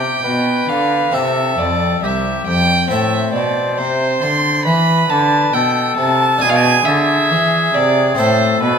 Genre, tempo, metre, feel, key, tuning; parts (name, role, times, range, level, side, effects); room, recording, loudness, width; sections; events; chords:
classical, baroque-style sonata movement with continuo; 68 BPM; 4/4; rubato; A4 = 440 Hz
warm oboe; melody; 0.0-8.8 s; G4 to C5; -20 LUFS; left 7 dB
rich violin; second line; 0.0-8.8 s; B4 to C6; -16 LUFS; right 4 dB
harpsichord; accompaniment; 0.0-8.8 s; C2 to A4; -21 LUFS; left 3 dB
warm cello; bass; 0.0-8.8 s; C2 to E3; -19 LUFS; equal
moderate recital hall reverb, RT60 1.5 s; -13 LUFS; side -6 dB against mid
0.0-8.8 A section
0.0 G7; 1.1 C; 2.9 Am; 6.4 E7/B; 8.2 Am